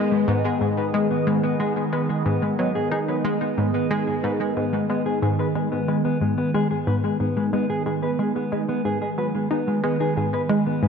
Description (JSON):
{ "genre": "ambient, sequencer-driven space music", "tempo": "91 BPM", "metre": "4/4", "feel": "straight", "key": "G# minor", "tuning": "A4 = 438 Hz", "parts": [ { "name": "phased analog pad", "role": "sustained chords", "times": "0.0-10.9 s", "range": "D#3 to D#5", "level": "-25 LUFS", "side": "right 2 dB", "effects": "phaser, chorus" }, { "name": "mellow electric guitar", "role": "arpeggios", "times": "0.0-10.9 s", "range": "G#3 to B4", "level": "-25 LUFS", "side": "moving between left 6 dB and right 2 dB", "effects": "auto-pan, tape echo" }, { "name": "analog pluck", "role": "riff", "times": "0.0-10.9 s", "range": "G#2 to D#4", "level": "-26 LUFS", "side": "equal", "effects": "chorus, tape echo" } ], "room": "wet plate reverb, RT60 2.8 s", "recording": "echo-heavy mix", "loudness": "-20 LUFS", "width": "side -6 dB against mid", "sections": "0.0-10.9 A section", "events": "none", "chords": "0.0 G#m" }